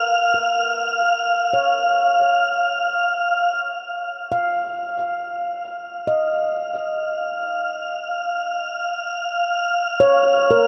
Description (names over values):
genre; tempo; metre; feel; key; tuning
ambient; free time; none; none; unclear; A4 = 440 Hz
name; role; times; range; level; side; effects
handpan; arpeggios; 0.0-10.7 s; A#4 to E#5; -24 LUFS; equal; diffuse ambient delay
wind-like tuned noise texture; texture; 0.0-10.7 s; E#5 to E#6; -22 LUFS; equal; built-in reverb
room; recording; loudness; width
wet huge ambient reverb, RT60 7.4 s; in a vast, echoing space; -21 LUFS; mono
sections
0.0-3.7 A section; 3.7-10.7 B section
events
fade-in on handpan 3.7-10.7; fade-in on synth texture 3.7-10.7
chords
0.0 C#; 3.7 N.C.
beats
free time